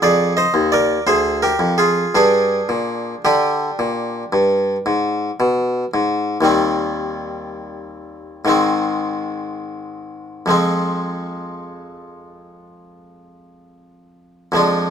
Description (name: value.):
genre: classical, baroque-style suite movement for harpsichord.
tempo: 55-60 BPM.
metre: 4/4.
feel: rubato.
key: unclear.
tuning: A4 = 440 Hz.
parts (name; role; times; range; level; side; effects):
harpsichord; solo; 0.0-14.9 s; D2 to Eb5; -16 LUFS; equal; none.
room: light reverb.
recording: dark, warm production.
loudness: -16 LUFS.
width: side -8 dB against mid.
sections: 0.0-6.5 A section; 6.5-14.9 B section.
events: none.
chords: 0.0 Ddim; 2.2 G5; 4.3 G; 6.5 Cm/Eb; 8.5 Ab; 10.5 Fm.